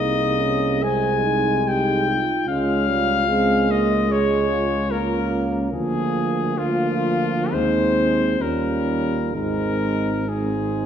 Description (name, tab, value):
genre	classical, hymn-like piece for brass band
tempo	61-75 BPM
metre	4/4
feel	rubato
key	Ab major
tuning	A4 = 442 Hz
part	clear cornet	melody	0.0-10.9 s	F4 to Ab5	-23 LUFS	left 5 dB	none
part	dark French horn section	second line	0.0-10.9 s	Eb4 to Ab4	-26 LUFS	right 6 dB	none
part	clear trombone	accompaniment	0.0-10.9 s	F3 to Bb3	-27 LUFS	right 2 dB	none
part	mellow euphonium	accompaniment	0.0-10.9 s	Ab3 to Eb4	-26 LUFS	equal	none
part	mellow tuba	bass	0.0-10.9 s	Ab1 to Eb2	-25 LUFS	equal	none
room	wet recital hall reverb, RT60 1.5 s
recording	heard from further back in the room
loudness	-18 LUFS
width	side -8 dB against mid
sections	0.0-10.9 A section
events	none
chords	0.0 Ab/C; 2.5 Bbm7/Db; 5.7 Bb7/D; 7.5 Ab/Eb; 8.4 Eb9; 9.3 Ab